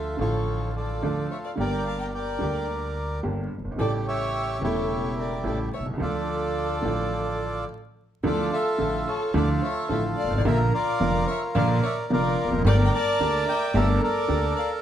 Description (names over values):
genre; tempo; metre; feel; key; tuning
tango; 109 BPM; 4/4; rubato; D harmonic minor; A4 = 440 Hz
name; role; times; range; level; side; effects
bandoneon; melody; 0.0-14.8 s; E4 to Bb5; -27 LUFS; right 1 dB; none
warm violin; second line; 0.0-14.7 s; A4 to G5; -31 LUFS; left 4 dB; none
bright upright piano; accompaniment; 0.0-14.5 s; E1 to G4; -28 LUFS; right 2 dB; none
upright bass; bass; 0.0-14.5 s; E1 to D2; -28 LUFS; equal; none
room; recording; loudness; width
wet studio reverb, RT60 0.8 s; heard from further back in the room, vinyl crackle; -23 LUFS; side -10 dB against mid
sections
0.0-8.2 A section; 8.2-14.8 A section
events
stop 7.7-8.2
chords
0.0 Dm; 1.6 Gm; 3.8 A7; 6.0 Dm; 8.2 Dmadd9; 10.5 Bb; 12.7 Gmadd9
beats
0.47 1.03 | 1.58 2.13 2.69 3.24 | 3.79 4.34 4.89 5.45 | 6.00 6.55 7.11 7.68 | 8.24 8.79 9.35 9.90 | 10.45 11.00 11.55 12.10 | 12.65 13.20 13.74 14.29